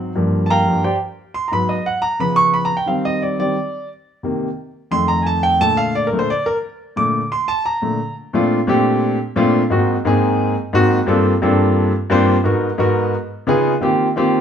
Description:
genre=jazz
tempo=176 BPM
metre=4/4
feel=straight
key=Bb major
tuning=A4 = 435 Hz
part: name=warm concert grand piano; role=solo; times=0.0-14.4 s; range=F2 to D6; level=-15 LUFS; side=equal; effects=none
room=wet studio reverb, RT60 0.9 s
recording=band playing live in one room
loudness=-15 LUFS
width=side -8 dB against mid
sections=0.0-8.3 A section; 8.3-14.4 B section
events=grand piano solo 0.0-8.3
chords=0.2 Gm7; 1.5 Abm7; 2.2 Db7; 2.9 Eb6; 4.2 Cm7; 4.9 F7; 5.6 Bbmaj7; 9.7 Ab9; 11.1 Gm11; 12.5 Abm7; 13.1 Db9; 13.8 Eb69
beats=| 0.16 0.50 0.84 1.18 | 1.52 1.86 2.20 2.54 | 2.88 3.22 3.56 3.91 | 4.25 4.59 4.93 5.27 | 5.61 5.95 6.29 6.63 | 6.97 7.32 7.66 8.00 | 8.34 8.68 9.03 9.37 | 9.71 10.05 10.40 10.74 | 11.08 11.43 11.77 12.11 | 12.46 12.80 13.14 13.48 | 13.83 14.17

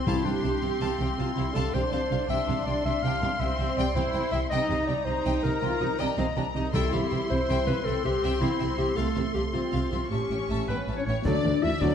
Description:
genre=cinematic, heroic adventure film score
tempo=108 BPM (dotted quarters)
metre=12/8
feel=straight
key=C major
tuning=A4 = 440 Hz
part: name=clear symphonic violin section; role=melody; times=0.0-11.9 s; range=B4 to C#6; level=-36 LUFS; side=left 5 dB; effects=none
part: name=warm clarinet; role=second line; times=0.0-10.7 s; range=C4 to F5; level=-30 LUFS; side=left 3 dB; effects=none
part: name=warm studio viola section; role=accompaniment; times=0.0-11.9 s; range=F#3 to G4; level=-32 LUFS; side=right 1 dB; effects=none
part: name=bright symphonic violin section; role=second line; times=0.1-11.9 s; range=B4 to A5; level=-39 LUFS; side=left 3 dB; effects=none
part: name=rich symphonic double bass section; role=bass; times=0.1-11.9 s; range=A1 to D2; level=-31 LUFS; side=right 2 dB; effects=none
part: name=warm symphonic cello section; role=bass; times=0.1-11.9 s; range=A2 to D3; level=-32 LUFS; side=right 3 dB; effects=none
part: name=timpani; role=percussion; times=0.1-0.6, 6.7-7.3 s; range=C3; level=-32 LUFS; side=left 1 dB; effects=none
part: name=clear oboe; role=second line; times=10.7-11.9 s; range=B4 to E5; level=-36 LUFS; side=right 1 dB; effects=none
part: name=hollow concert flute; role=second line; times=10.7-11.9 s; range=B4 to E5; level=-33 LUFS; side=left 2 dB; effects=none
part: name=mellow French horn section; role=sustained chords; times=10.7-11.9 s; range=B3 to E4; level=-29 LUFS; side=left 8 dB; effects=none
part: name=warm tuba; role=bass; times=11.3-11.9 s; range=D2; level=-33 LUFS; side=right 2 dB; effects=none
part: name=concert snare drum, clash cymbals and concert bass drum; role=drums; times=11.3-11.9 s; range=none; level=-32 LUFS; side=left 1 dB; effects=none
room=moderate scoring stage reverb, RT60 2.0 s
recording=dark, warm production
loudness=-24 LUFS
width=side -8 dB against mid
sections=0.0-11.3 A section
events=none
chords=0.1 F/C; 2.3 C; 4.5 Eb/C; 6.7 C; 9.0 F/C; 10.1 A7; 11.3 D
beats=| 0.07 0.62 1.18 1.74 | 2.29 2.85 3.40 3.96 | 4.51 5.07 5.62 6.18 | 6.74 7.29 7.85 8.41 | 8.97 9.54 10.11 10.69 | 11.26 11.82

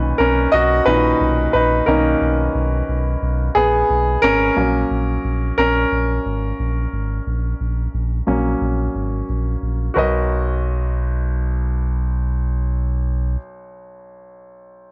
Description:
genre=pop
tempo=89 BPM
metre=4/4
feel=straight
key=B major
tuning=A4 = 440 Hz
part: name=bright concert grand piano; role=accompaniment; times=0.0-14.9 s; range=B1 to D#5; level=-21 LUFS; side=equal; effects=none
part: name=sub bass with octave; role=bass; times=0.0-13.4 s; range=G#1 to B1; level=-23 LUFS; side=equal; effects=none
room=light reverb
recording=home recording on cassette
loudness=-19 LUFS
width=mono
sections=0.0-10.0 A section; 10.0-12.7 B section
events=grand piano solo 0.0-10.0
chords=0.0 Bmaj7; 4.6 G#9sus4; 10.0 Bmaj7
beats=0.53 1.20 | 1.87 2.55 3.22 3.89 | 4.57 5.24 5.91 6.59 | 7.26 7.94 8.61 9.28 | 9.96 10.63 11.31 11.98

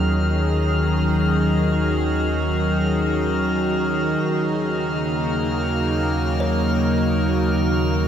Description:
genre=ambient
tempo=free time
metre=none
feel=none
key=Eb minor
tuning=A4 = 440 Hz
part: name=evolving wavetable pad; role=sustained chords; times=0.0-8.1 s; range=Db3 to Bb4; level=-21 LUFS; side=equal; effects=chorus, built-in reverb
part: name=kalimba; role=arpeggios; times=0.0-0.7, 6.4-8.1 s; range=Db5 to Gb5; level=-34 LUFS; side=right 1 dB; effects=tape echo
part: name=warm sub bass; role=bass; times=0.0-8.1 s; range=Eb2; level=-25 LUFS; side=equal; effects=none
part: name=organ-like drone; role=drone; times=0.0-8.1 s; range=Eb3 to Eb4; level=-26 LUFS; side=equal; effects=ensemble chorus, built-in reverb, phaser
part: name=drifting glass-harmonics texture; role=texture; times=0.0-8.1 s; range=F6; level=-28 LUFS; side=left 2 dB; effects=chorus, built-in reverb
room=wet shimmer reverb, RT60 7.7 s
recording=none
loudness=-18 LUFS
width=side -9 dB against mid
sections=0.0-8.1 A section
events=fade-in on kalimba 0.0-8.1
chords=0.0 Ebm9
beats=free time

